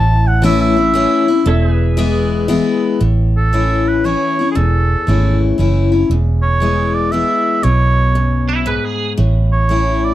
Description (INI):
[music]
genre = honky-tonk and classic country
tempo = 116 BPM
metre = 3/4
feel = swing 66% on 8ths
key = A major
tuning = A4 = 440 Hz
[part]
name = warm oboe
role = melody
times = 0.0-10.1 s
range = G#4 to A5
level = -18 LUFS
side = right 2 dB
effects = none
[part]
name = picked steel-string acoustic guitar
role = accompaniment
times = 0.0-10.1 s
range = E2 to E4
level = -16 LUFS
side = left 4 dB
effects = none
[part]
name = pedal steel guitar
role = sustained chords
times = 0.0-3.0 s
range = G#4 to E5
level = -24 LUFS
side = right 4 dB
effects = lush chorus
[part]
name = vintage muted fingered electric bass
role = bass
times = 0.0-10.1 s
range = E1 to B1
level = -15 LUFS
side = right 1 dB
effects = none
[part]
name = twangy electric guitar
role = second line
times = 8.5-9.1 s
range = E4 to B4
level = -21 LUFS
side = right 4 dB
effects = ensemble chorus, tape echo
[sound]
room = small room ambience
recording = dry, close 1970s-style studio recording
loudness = -12 LUFS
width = side -13 dB against mid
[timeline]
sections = 0.0-3.0 A section; 3.0-10.1 B section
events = oboe solo 0.0-3.0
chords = 0.0 A; 1.5 E; 3.0 A; 6.1 E; 9.2 A